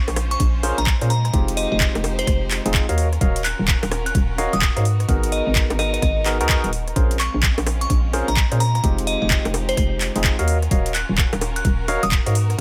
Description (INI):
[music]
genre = UK garage, two-step garage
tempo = 128 BPM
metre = 4/4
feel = swing 63% on 16ths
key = unclear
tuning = A4 = 441 Hz
[part]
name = clear symphonic violin section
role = sustained chords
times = 0.0-12.6 s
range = Ab3 to C5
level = -36 LUFS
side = equal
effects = sidechain pumping
[part]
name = hollow knocking FM bass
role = bass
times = 0.1-12.6 s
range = Eb1 to Bb2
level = -24 LUFS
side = equal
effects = tube saturation
[part]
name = garage drum kit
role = drums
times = 0.1-12.6 s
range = bongos, handclaps, hi-hat, rim click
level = -26 LUFS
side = equal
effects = overdrive
[part]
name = glassy synth bell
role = melody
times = 0.3-12.1 s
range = C5 to Gb6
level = -30 LUFS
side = equal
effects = chorus, phaser, dub echo
[part]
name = electronic kick drum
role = drums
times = 0.4-12.2 s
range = none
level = -22 LUFS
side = equal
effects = overdrive
[part]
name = barky tine electric piano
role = stabs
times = 0.6-12.6 s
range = Ab3 to F5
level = -28 LUFS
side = equal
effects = dub echo
[sound]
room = light reverb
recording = none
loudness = -20 LUFS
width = mono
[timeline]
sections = 0.0-12.6 A section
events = none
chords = 0.0 Bbm9; 1.3 Fm9; 3.0 Ebm9; 4.9 Abm9; 7.0 Bbm9; 8.8 Fm9; 10.5 Ebm9